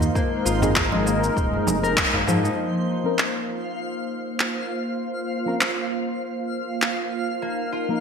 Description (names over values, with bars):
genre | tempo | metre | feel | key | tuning
organic downtempo | 99 BPM | 4/4 | swing 54% on 16ths | unclear | A4 = 440 Hz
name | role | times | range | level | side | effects
warm analog pad | sustained chords | 0.0-8.0 s | Eb3 to F5 | -27 LUFS | right 1 dB | chorus, sidechain pumping
concert harp | arpeggios | 0.0-8.0 s | F3 to Bb4 | -27 LUFS | left 3 dB | digital delay
smooth synth bass | bass | 0.0-2.5 s | Eb1 to Ab2 | -26 LUFS | equal | tube saturation, sidechain pumping
electronic shaker, handclaps and congas | drums | 0.0-7.0 s | none | -24 LUFS | equal | small room ambience, gated reverb
darbuka | percussion | 0.0-2.4 s | none | -31 LUFS | left 1 dB | none
twinkling granular texture | texture | 0.0-8.0 s | C5 to F5 | -33 LUFS | equal | built-in reverb, analog chorus
electronic kick drum | drums | 0.2-2.1 s | none | -26 LUFS | equal | small room ambience
deep mellow chord stab | accompaniment | 0.6-8.0 s | F3 to Bb4 | -29 LUFS | left 3 dB | wide subtle chorus, cassette tape, sidechain pumping, digital delay
room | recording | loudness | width
wet lush hall reverb, RT60 2.2 s | bright 1980s-style digital production | -21 LUFS | side -6 dB against mid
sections
0.0-2.6 A section; 2.6-8.0 B section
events
band accent 2.0-2.3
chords
0.0 Ebsus2; 2.6 Bbsus2; 7.4 Ebsus2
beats
| 0.15 0.76 1.37 1.97 | 2.58 3.19 3.79 4.40 | 5.00 5.61 6.22 6.82 | 7.43